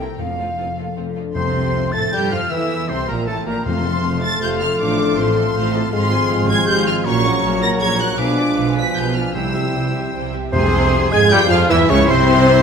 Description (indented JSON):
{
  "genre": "classical, dramatic, fast romantic movement for symphony orchestra",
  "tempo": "157 BPM",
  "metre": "3/4",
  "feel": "straight",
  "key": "F major, F minor from 5.9 s",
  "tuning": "A4 = 440 Hz",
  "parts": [
    { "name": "warm symphonic violin section", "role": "melody", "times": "0.0-12.6 s", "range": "F5 to B6", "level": "-23 LUFS", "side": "left 1 dB", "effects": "none" },
    { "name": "mellow hollow concert flute", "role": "second line", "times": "0.0-12.6 s", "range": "F5 to A6", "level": "-26 LUFS", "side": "left 2 dB", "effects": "none" },
    { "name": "rich symphonic violin section", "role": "second line", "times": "0.0-12.6 s", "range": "A3 to A5", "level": "-27 LUFS", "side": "left 2 dB", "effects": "none" },
    { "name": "warm symphonic viola section", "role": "accompaniment", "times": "0.0-12.6 s", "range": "G3 to A4", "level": "-26 LUFS", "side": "right 1 dB", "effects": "none" },
    { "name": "dark French horn section", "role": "sustained chords", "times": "0.0-12.6 s", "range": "A3 to B4", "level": "-25 LUFS", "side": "left 4 dB", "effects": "none" },
    { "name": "concert harp", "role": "arpeggios", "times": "0.0-12.6 s", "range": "F2 to F5", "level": "-25 LUFS", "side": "left 8 dB", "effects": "none" },
    { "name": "rich chamber double bass section", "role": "bass", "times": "0.0-12.6 s", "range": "F1 to A2", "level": "-23 LUFS", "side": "right 4 dB", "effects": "none" },
    { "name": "rich symphonic cello section", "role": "bass", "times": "0.0-12.6 s", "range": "F2 to Ab4", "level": "-25 LUFS", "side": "right 3 dB", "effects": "none" },
    { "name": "timpani", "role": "percussion", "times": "0.2-4.2, 9.3-11.1 s", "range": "F2 to C3", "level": "-26 LUFS", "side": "left 1 dB", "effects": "none" },
    { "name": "clear oboe", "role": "second line", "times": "1.4-12.6 s", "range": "A4 to A5", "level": "-27 LUFS", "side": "right 1 dB", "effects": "none" },
    { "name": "dark bassoon", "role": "accompaniment", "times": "1.4-12.6 s", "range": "A2 to A3", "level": "-24 LUFS", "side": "right 1 dB", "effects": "none" },
    { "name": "clear trombone section", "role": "sustained chords", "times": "1.4-12.6 s", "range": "A2 to C4", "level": "-27 LUFS", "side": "right 4 dB", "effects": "none" }
  ],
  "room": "moderate scoring stage reverb, RT60 1.6 s",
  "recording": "none",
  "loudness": "-15 LUFS",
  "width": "side -6 dB against mid",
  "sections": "0.0-1.4 A section; 1.4-10.5 A section; 10.5-12.6 B section",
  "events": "none",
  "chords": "0.2 F; 1.4 F/C; 2.5 C; 3.7 F; 4.8 F/A; 5.9 Fm/Ab; 7.1 Gb/Bb; 8.2 Bdim7; 9.4 C; 10.5 Fm/C; 11.7 C7"
}